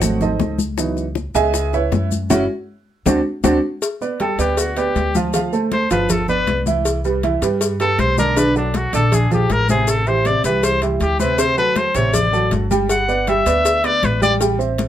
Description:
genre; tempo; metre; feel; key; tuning
Afro-Cuban jazz; 159 BPM; 4/4; straight; G major from 3.8 s; A4 = 443 Hz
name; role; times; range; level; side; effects
warm upright piano; accompaniment; 0.0-14.9 s; C3 to G#5; -20 LUFS; right 3 dB; none
upright bass; bass; 0.0-14.9 s; F#1 to G2; -22 LUFS; equal; none
bongos and cowbell; percussion; 0.0-14.9 s; none; -24 LUFS; left 3 dB; none
congas; percussion; 0.0-14.9 s; none; -24 LUFS; left 3 dB; none
maracas; percussion; 0.0-14.9 s; none; -29 LUFS; left 9 dB; none
clear trumpet; melody; 4.2-14.3 s; D4 to F#5; -19 LUFS; left 2 dB; plate reverb
room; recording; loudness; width
light reverb; none; -15 LUFS; side -11 dB against mid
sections
0.0-3.8 A section; 3.8-14.9 A section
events
upright piano solo 0.0-3.8; band accent 2.3-3.8; trumpet solo 3.8-14.9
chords
0.0 G#7b9; 0.8 C#m11; 2.3 F#5; 3.1 D7; 3.8 G; 5.3 Dm7; 6.1 G6; 6.9 Cmaj9; 8.4 Bm7; 9.1 Bb9; 9.9 Am7; 11.4 D7; 12.9 G6

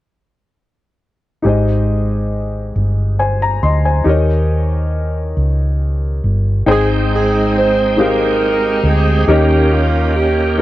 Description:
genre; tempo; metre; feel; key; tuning
slow gospel; 46 BPM (dotted quarters); 6/8; straight; Ab major; A4 = 439 Hz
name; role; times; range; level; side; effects
warm concert grand piano; accompaniment; 1.4-10.6 s; Ab2 to C6; -18 LUFS; left 3 dB; none
hollow-body short-scale fingered electric bass; bass; 1.4-10.6 s; G1 to Eb2; -16 LUFS; equal; none
mellow saxophone section; melody; 6.7-10.6 s; Bb3 to C5; -16 LUFS; right 2 dB; none
bright tonewheel organ; sustained chords; 6.7-10.6 s; Eb3 to G5; -19 LUFS; right 2 dB; fast rotary speaker, overdrive, chorus vibrato
room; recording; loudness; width
light reverb; none; -13 LUFS; side -15 dB against mid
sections
1.4-6.7 A section; 6.7-10.6 B section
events
none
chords
1.4 Abmaj7; 4.1 Eb7; 6.7 Abmaj7; 9.3 Eb7

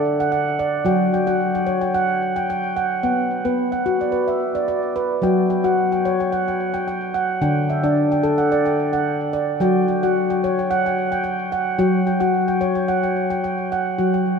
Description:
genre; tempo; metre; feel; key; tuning
world meditative, meditative tuned percussion; 110 BPM; 4/4; swing 54% on 16ths; unclear; A4 = 442 Hz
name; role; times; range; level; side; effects
handpan; solo; 0.0-14.4 s; D3 to G5; -18 LUFS; equal; tape echo
room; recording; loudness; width
wet cathedral reverb, RT60 5.5 s; in a vast, echoing space; -18 LUFS; side -6 dB against mid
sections
0.0-14.0 A section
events
none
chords
0.0 D; 0.9 F#5; 3.0 Bm; 5.2 F#5; 7.4 D; 9.6 F#5

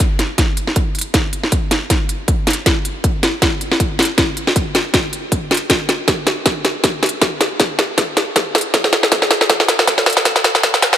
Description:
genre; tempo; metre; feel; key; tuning
future bass; 158 BPM; 4/4; swing 55% on 16ths, half-time; none; none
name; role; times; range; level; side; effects
electronic kick drum; drums; 0.0-10.7 s; none; -19 LUFS; equal; studio reverb
trap drum kit; drums; 0.0-11.0 s; hi-hat, snare drum; -14 LUFS; equal; studio reverb
room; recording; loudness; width
moderate huge ambient reverb, RT60 4.7 s; high-pass filter; -14 LUFS; side -10 dB against mid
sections
0.0-11.0 A section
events
build-up 0.0-11.0; drum fill 0.0-11.0; filter sweep 0.0-11.0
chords
none

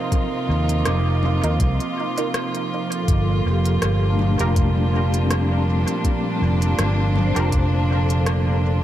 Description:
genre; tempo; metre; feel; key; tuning
ambient dub; 81 BPM; 4/4; swing 55% on 16ths; G minor; A4 = 440 Hz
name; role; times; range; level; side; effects
warm chamber string section; sustained chords; 0.0-8.8 s; Bb2 to F4; -24 LUFS; right 2 dB; none
vibraphone with medium mallets; arpeggios; 0.0-8.8 s; A3 to D6; -29 LUFS; left 5 dB; dub echo
drifting glass-harmonics texture; texture; 0.0-8.8 s; Bb3; -32 LUFS; right 7 dB; chorus, built-in reverb
electronic kick drum; drums; 0.1-7.7 s; none; -21 LUFS; equal; none
organic electronic drum kit; drums; 0.1-8.4 s; congas, hi-hat, rim click; -29 LUFS; left 1 dB; dub echo
fingered electric bass; bass; 0.5-8.8 s; F1 to Eb2; -20 LUFS; equal; none
filtered dub chord stab; stabs; 1.4-7.5 s; Eb4 to Bb4; -31 LUFS; right 2 dB; chorus, dub echo
room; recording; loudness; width
light reverb; echo-heavy mix; -18 LUFS; side -12 dB against mid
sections
0.0-8.8 A section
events
none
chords
0.0 F7sus4; 3.1 Gm7

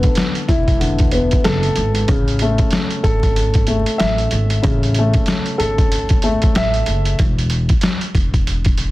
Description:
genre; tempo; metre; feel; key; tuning
hip hop, boom-bap hip-hop; 94 BPM; 4/4; swing 58% on 16ths; A major; A4 = 440 Hz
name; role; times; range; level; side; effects
dark baby grand piano; accompaniment; 0.0-7.2 s; C#3 to E5; -19 LUFS; left 1 dB; cassette tape, high-pass filter, low-pass filter
upright bass; bass; 0.0-8.9 s; E1 to A1; -19 LUFS; equal; none
trip hop sampler-style drum kit; drums; 0.0-8.9 s; hi-hat, kick drum, snare drum; -17 LUFS; equal; none
room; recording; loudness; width
little or no reverb; dense, heavily limited modern master, vinyl crackle; -14 LUFS; side -18 dB against mid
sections
0.0-2.1 A section; 2.1-8.9 A section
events
none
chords
0.0 E7sus4; 2.1 Amaj7; 7.2 N.C.

